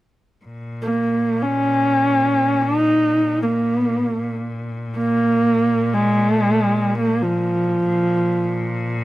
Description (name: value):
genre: mongolian traditional, Mongolian folk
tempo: free time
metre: none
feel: none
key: Bb yu mode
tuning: A4 = 439 Hz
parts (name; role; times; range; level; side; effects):
- clear cello; drone; 0.4-9.0 s; Bb2; -25 LUFS; left 1 dB; none
- warm horsehead fiddle; melody; 0.8-9.0 s; F3 to Eb4; -17 LUFS; equal; none
room: light reverb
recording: close, detailed microphones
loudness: -17 LUFS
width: side -16 dB against mid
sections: 0.5-9.0 A section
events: none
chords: none